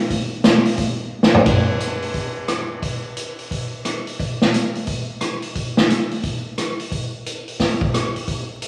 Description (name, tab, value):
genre	country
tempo	176 BPM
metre	4/4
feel	swing 63% on 8ths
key	none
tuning	none
part	swinging big-band drum kit	drums	0.1-8.7 s	hi-hat, kick drum, ride cymbal, rim click, snare drum, toms	-21 LUFS	equal	none
room	moderate large studio reverb, RT60 0.9 s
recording	vinyl crackle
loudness	-21 LUFS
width	mono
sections	0.0-1.5 A section; 1.5-8.7 B section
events	drum fill 1.1-1.5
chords	none